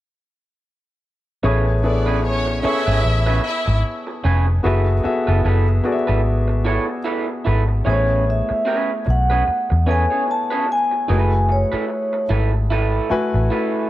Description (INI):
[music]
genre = soul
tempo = 74 BPM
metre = 4/4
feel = swing 58% on 16ths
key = A major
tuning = A4 = 438 Hz
[part]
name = warm concert grand piano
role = accompaniment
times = 1.4-13.9 s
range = A3 to G#5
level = -23 LUFS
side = left 2 dB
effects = none
[part]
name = electric guitar through a small old amp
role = riff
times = 1.4-13.9 s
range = C#4 to C#5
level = -25 LUFS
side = right 5 dB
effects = none
[part]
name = vintage muted fingered electric bass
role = bass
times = 1.4-13.5 s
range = F1 to E2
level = -18 LUFS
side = equal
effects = none
[part]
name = rich chamber violin section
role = second line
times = 1.8-3.8 s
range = C#4 to E5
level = -24 LUFS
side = equal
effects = none
[part]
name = vibraphone with soft mallets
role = melody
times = 7.9-12.3 s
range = C#5 to A5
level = -21 LUFS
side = equal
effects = slapback echo
[sound]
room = light reverb, small room ambience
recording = none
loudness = -16 LUFS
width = side -15 dB against mid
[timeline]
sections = 1.4-7.9 A section; 7.9-13.9 B section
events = none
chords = 1.4 Amaj9; 4.6 F#m11; 7.9 Amaj9; 11.1 F#m11